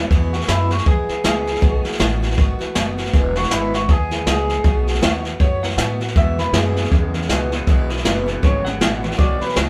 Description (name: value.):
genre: rockabilly.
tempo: 159 BPM.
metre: 4/4.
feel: swing 59% on 8ths.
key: E major.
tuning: A4 = 442 Hz.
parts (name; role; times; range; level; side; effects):
electric guitar through a small old amp; melody; 0.0-9.7 s; E4 to F#5; -26 LUFS; equal; none.
picked swing-style acoustic guitar; accompaniment; 0.0-9.7 s; E2 to F#4; -29 LUFS; equal; none.
electric guitar through a small old amp; riff; 0.0-0.1, 6.2-9.7 s; E2 to F#3; -30 LUFS; equal; none.
upright bass; bass; 0.0-9.7 s; E1 to A2; -25 LUFS; equal; none.
jazz brush drum kit; drums; 0.1-9.7 s; hi-hat, kick drum, snare drum; -20 LUFS; equal; none.
room: light reverb.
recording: band playing live in one room.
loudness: -18 LUFS.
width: mono.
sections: 0.1-9.7 A section.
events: none.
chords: 0.1 E; 1.6 B7; 3.1 E; 4.6 B7; 6.2 E; 9.2 B7.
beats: | 0.11 0.49 0.87 1.25 | 1.62 2.00 2.38 2.76 | 3.13 3.51 3.89 4.27 | 4.65 5.02 5.40 5.78 | 6.16 6.54 6.92 7.29 | 7.67 8.05 8.43 8.81 | 9.19 9.57.